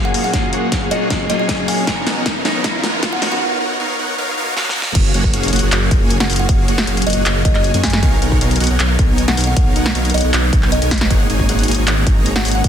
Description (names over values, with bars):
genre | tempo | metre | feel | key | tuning
future bass | 156 BPM | 4/4 | half-time | F# major | A4 = 438 Hz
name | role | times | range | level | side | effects
clean electric guitar | accompaniment | 0.0-3.4 s | E#3 to A#4 | -24 LUFS | left 4 dB | sidechain pumping, dub echo
airy breathy pad | sustained chords | 0.0-12.7 s | F#3 to A#4 | -30 LUFS | right 1 dB | none
dense compressed supersaw | riff | 0.0-12.7 s | A#3 to A#5 | -20 LUFS | equal | sidechain pumping, low-pass filter
wide detuned saw bass | bass | 0.0-12.7 s | F#1 to F#2 | -19 LUFS | equal | chorus, sidechain pumping, high-pass filter
riser and swell | sound effects | 0.8-5.0 s | none | -26 LUFS | right 2 dB | none
kalimba | melody | 0.1-3.4, 6.2-12.7 s | D#5 to G#5 | -24 LUFS | equal | sidechain pumping, ping-pong delay
big-room dance drum kit | drums | 0.1-12.7 s | crash cymbal, handclaps, hi-hat, snare drum | -20 LUFS | equal | none
electronic kick drum | drums | 0.3-12.7 s | none | -17 LUFS | equal | none
room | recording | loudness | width
light reverb | dense, heavily limited modern master, high-pass filter | -13 LUFS | side -9 dB against mid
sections
0.0-5.0 A section; 5.0-12.7 B section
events
build-up 0.0-5.0; drum fill 0.0-3.4, 4.6-5.0; filter sweep on supersaw synth 0.0-5.0; filter sweep 0.0-5.0; riser 0.8-3.4; swell 4.2-5.0; drop 5.0-12.7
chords
0.0 F#maj9; 1.9 Bmaj9#11; 5.0 F#maj9; 8.0 Bmaj9#11; 11.1 G#9sus4